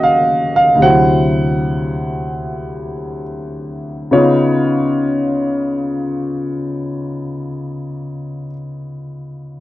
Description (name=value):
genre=solo jazz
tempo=free time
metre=none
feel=none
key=unclear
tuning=A4 = 444 Hz
part: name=warm grand piano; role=solo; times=0.0-9.6 s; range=D2 to Gb5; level=-15 LUFS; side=equal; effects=none
room=light reverb, small room reverb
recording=dry, close 1970s-style studio recording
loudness=-14 LUFS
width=side -15 dB against mid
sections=0.0-4.1 A section; 4.1-7.7 B section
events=slowing down 0.0-4.1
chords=0.0 Ebm7; 0.8 D9; 4.1 Db9